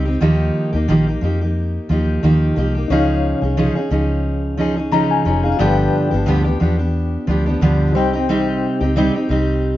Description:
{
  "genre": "acoustic pop",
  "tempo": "89 BPM",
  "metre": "4/4",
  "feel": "swing 55% on 16ths",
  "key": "unclear",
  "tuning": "A4 = 440 Hz",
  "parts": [
    { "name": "fingerpicked steel-string acoustic guitar", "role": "accompaniment", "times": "0.0-9.8 s", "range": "G2 to Ab4", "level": "-17 LUFS", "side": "right 1 dB", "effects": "none" },
    { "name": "vintage muted fingered electric bass", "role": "bass", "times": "0.0-9.8 s", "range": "F1 to F2", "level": "-20 LUFS", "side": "left 1 dB", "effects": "none" },
    { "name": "barky reed electric piano", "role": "accompaniment", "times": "2.9-9.8 s", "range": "Eb4 to Bb5", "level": "-23 LUFS", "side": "left 8 dB", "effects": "overdrive, fast tremolo" }
  ],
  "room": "light reverb",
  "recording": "dark, warm production, nothing above 7.5 kHz",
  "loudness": "-15 LUFS",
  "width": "side -14 dB against mid",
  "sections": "0.0-2.9 A section; 2.9-9.8 B section",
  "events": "none",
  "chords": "0.2 Ebadd9; 2.9 Dbadd9; 5.6 G7; 8.0 Cm"
}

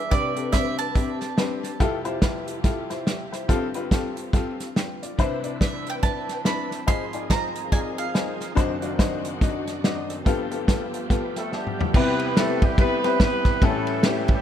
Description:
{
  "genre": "uptempo gospel",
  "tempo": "142 BPM",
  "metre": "4/4",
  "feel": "swing 61% on 8ths",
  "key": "C major",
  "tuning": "A4 = 440 Hz",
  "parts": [
    { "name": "bowl-back mandolin", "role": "melody", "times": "0.0-1.6, 5.6-8.4 s", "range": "D5 to C6", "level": "-30 LUFS", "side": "right 6 dB", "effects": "tape echo" },
    { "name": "clear upright piano", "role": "accompaniment", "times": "0.0-14.4 s", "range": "F1 to A5", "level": "-28 LUFS", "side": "left 5 dB", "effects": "none" },
    { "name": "dark studio string section", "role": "sustained chords", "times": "0.0-11.9 s", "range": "Eb3 to B4", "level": "-36 LUFS", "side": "left 1 dB", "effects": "none" },
    { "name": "warm soul drum kit", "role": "drums", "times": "0.1-14.4 s", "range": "crash cymbal, hi-hat, kick drum, ride cymbal, snare drum, toms", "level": "-22 LUFS", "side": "equal", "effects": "tape echo" },
    { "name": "bright tonewheel organ", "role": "sustained chords", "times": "5.2-14.4 s", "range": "F#2 to D5", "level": "-35 LUFS", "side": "right 2 dB", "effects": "slow rotary speaker, overdrive, chorus vibrato" },
    { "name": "clear horn section", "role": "melody", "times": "11.4-14.4 s", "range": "G3 to B4", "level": "-25 LUFS", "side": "right 1 dB", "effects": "tape echo" }
  ],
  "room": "light reverb",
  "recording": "echo-heavy mix",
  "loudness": "-21 LUFS",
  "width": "side -10 dB against mid",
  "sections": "0.0-11.9 A section; 11.9-14.4 B section",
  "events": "upright piano fill 11.1-11.9; drum fill 11.5-11.9",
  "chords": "0.1 Am11/C; 1.8 Fmaj9; 3.5 G9sus4; 5.2 Cmaj9; 6.9 Ab6; 8.6 D7b9/F#; 10.3 G9; 11.9 Cmaj7; 13.6 A7"
}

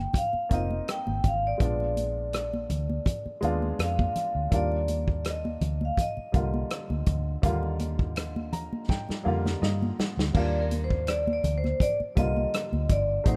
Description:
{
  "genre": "lush 1970s-style soul",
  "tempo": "82 BPM",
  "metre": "4/4",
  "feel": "swing 54% on 16ths",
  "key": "Eb major",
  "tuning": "A4 = 440 Hz",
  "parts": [
    { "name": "vibraphone with medium hard mallets", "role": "melody", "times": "0.0-13.4 s", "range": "Bb4 to G5", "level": "-34 LUFS", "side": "equal", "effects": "slapback echo" },
    { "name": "warm baby grand piano", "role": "accompaniment", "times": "0.0-13.4 s", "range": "D3 to Bb5", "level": "-36 LUFS", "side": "equal", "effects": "none" },
    { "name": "vintage muted fingered electric bass", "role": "bass", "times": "0.0-13.4 s", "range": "F1 to G2", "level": "-32 LUFS", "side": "equal", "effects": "none" },
    { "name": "warm soul drum kit", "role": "drums", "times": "0.1-13.4 s", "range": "crash cymbal, hi-hat, kick drum, rim click, snare drum", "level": "-30 LUFS", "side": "equal", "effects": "none" },
    { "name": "congas", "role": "percussion", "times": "0.1-13.4 s", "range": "none", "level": "-37 LUFS", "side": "equal", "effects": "none" }
  ],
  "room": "little or no reverb",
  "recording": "rough home demo mix",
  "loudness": "-28 LUFS",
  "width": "mono",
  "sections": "0.0-10.3 A section; 10.3-13.4 B section",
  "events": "grand piano fill 8.2-10.3; drum fill 8.9-10.3; vibraphone solo 10.3-13.4",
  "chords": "0.0 Ab6; 1.6 Bb7b9; 4.5 Ebmaj7"
}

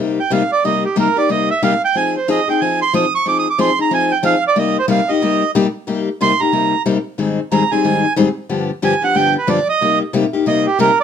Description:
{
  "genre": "jazz",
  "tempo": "183 BPM",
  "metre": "4/4",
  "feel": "swing 61% on 8ths",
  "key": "C minor",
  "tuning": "A4 = 439 Hz",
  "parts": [
    { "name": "picked steel-string acoustic guitar", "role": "accompaniment", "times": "0.0-10.9 s", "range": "G2 to Ab4", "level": "-16 LUFS", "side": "left 4 dB", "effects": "none" },
    { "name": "accordion", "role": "melody", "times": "0.2-11.0 s", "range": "G4 to Eb6", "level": "-16 LUFS", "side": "right 6 dB", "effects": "none" }
  ],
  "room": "moderate studio reverb, RT60 0.6 s",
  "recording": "none",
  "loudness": "-14 LUFS",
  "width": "side -8 dB against mid",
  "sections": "0.0-11.0 A section",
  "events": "accordion solo 0.0-11.0",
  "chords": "0.0 Cm7; 1.9 Fm7; 4.6 Cm7; 7.2 Abmaj7; 8.5 G7; 9.8 Cm7"
}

